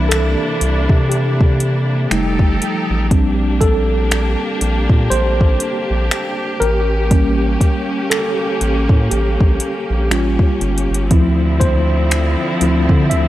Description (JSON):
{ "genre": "contemporary R&B", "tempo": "60 BPM", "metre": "4/4", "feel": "swing 58% on 16ths", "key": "unclear", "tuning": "A4 = 440 Hz", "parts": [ { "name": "tine electric piano", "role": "accompaniment", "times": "0.0-13.3 s", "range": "E3 to E5", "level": "-19 LUFS", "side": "equal", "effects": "overdrive, fast stereo tremolo" }, { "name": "clear studio string section", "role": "sustained chords", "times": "0.0-13.3 s", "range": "C3 to A4", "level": "-22 LUFS", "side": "equal", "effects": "none" }, { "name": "round analog bass", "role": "bass", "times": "0.0-13.3 s", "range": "F1 to D3", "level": "-17 LUFS", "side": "equal", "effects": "none" }, { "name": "smooth R&B drum kit", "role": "drums", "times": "0.1-13.3 s", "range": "finger snaps, hi-hat, kick drum", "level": "-15 LUFS", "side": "equal", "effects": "none" } ], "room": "little or no reverb", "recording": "dry, gritty hardware recording", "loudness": "-13 LUFS", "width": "side -14 dB against mid", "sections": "0.0-13.3 A section", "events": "tine electric piano solo 0.0-13.3", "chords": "0.0 C9; 2.1 F9; 3.1 Bb6; 6.6 A7b9; 10.1 A7b13; 11.1 Dm9" }